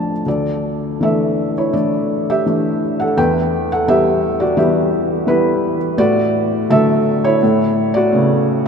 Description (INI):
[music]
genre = classical, lyrical solo piano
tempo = 84 BPM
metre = 4/4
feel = rubato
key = D major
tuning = A4 = 438 Hz
[part]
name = felt-muted upright piano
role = solo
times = 0.0-8.7 s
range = A1 to A5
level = -14 LUFS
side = equal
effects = none
[sound]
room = wet cathedral reverb, RT60 6.7 s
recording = in a vast, echoing space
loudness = -14 LUFS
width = side -6 dB against mid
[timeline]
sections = 0.3-8.7 A section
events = felt piano fill 0.0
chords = 0.3 Dsus2; 3.2 Em; 6.0 D/A; 7.4 Aadd9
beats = | 0.26 1.01 1.74 2.46 | 3.18 3.88 4.58 5.28 | 5.98 6.70 7.42 8.13